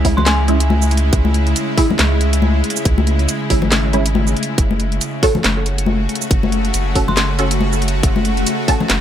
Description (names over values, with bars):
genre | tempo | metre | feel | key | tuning
deep dubstep | 139 BPM | 4/4 | swing 57% on 16ths, half-time | C# minor | A4 = 440 Hz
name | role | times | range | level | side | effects
bowed-like drone | sustained chords | 0.0-9.0 s | C#3 to F#4 | -21 LUFS | equal | built-in reverb
filtered dub chord stab | stabs | 0.0-8.9 s | G#3 to A4 | -22 LUFS | right 2 dB | phaser, ensemble chorus, dub echo
soft dub sub bass | bass | 0.0-9.0 s | F#1 to C#2 | -17 LUFS | equal | none
electronic kick drum | drums | 0.0-8.8 s | none | -16 LUFS | equal | none
garage drum kit | drums | 0.0-9.0 s | handclaps, hi-hat, shaker, snare drum | -19 LUFS | right 1 dB | none
dark detuned synth bell | melody | 0.2-0.9, 7.1-7.2 s | G#5 to B#5 | -25 LUFS | left 2 dB | chorus, dub echo
congas | percussion | 0.2-8.9 s | none | -22 LUFS | left 5 dB | none
room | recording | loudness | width
light reverb | none | -14 LUFS | side -10 dB against mid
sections
0.0-9.0 A section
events
none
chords
0.0 C#m; 4.6 F#m